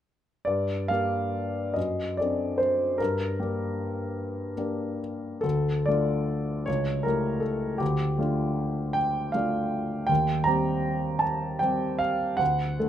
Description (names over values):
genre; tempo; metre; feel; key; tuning
classical, romantic character piece for solo piano; 44-54 BPM (dotted quarters); 6/8; rubato; G minor; A4 = 440 Hz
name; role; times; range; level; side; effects
clear grand piano; solo; 0.4-12.9 s; C#2 to Bb5; -25 LUFS; equal; none
room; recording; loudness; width
light reverb; minimal, uncompressed stereo recording; -25 LUFS; side -10 dB against mid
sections
0.5-12.9 A section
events
none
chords
0.5 Gm; 1.8 D7/F#; 3.0 Gm; 5.4 Dm; 6.7 A7/C#; 7.8 Dm; 10.1 Cm/Eb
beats
| 0.47 1.76 | 2.99 4.17 | 5.43 6.67 | 7.81 8.96 | 10.09 11.22 | 12.40